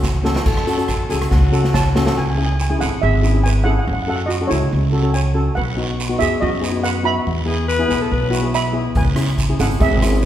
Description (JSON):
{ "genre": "calypso", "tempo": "141 BPM", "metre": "4/4", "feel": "swing 54% on 16ths", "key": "unclear", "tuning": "A4 = 436 Hz", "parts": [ { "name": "steel pan", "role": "melody", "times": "0.0-10.2 s", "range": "E4 to B5", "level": "-22 LUFS", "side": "right 3 dB", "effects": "none" }, { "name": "steel pan", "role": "accompaniment", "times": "0.0-10.3 s", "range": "B3 to A4", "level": "-23 LUFS", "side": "left 3 dB", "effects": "none" }, { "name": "upright bass", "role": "bass", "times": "0.0-10.3 s", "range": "G#1 to F#2", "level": "-18 LUFS", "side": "equal", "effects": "none" }, { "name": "street-band drum kit", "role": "drums", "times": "0.0-2.2, 8.9-10.2 s", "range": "crash cymbal, hi-hat, kick drum, rim click, snare drum", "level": "-20 LUFS", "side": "equal", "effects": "none" }, { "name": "guiro", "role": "percussion", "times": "0.0-10.3 s", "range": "none", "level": "-31 LUFS", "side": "right 4 dB", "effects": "none" }, { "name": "raspy alto saxophone", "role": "second line", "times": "0.5-2.1, 7.5-8.4 s", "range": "F#4 to B4", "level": "-24 LUFS", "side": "left 3 dB", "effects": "none" } ], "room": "wet scoring stage reverb, RT60 1.9 s", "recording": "recorded in a church or concert hall", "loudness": "-15 LUFS", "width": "side -11 dB against mid", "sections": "0.5-2.2 A section; 2.2-10.3 B section", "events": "drum fill 0.0-0.5, 1.3-2.2", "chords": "0.5 F#m; 2.2 C#m; 3.9 F#madd9; 5.6 B; 7.3 E; 9.0 C#m7" }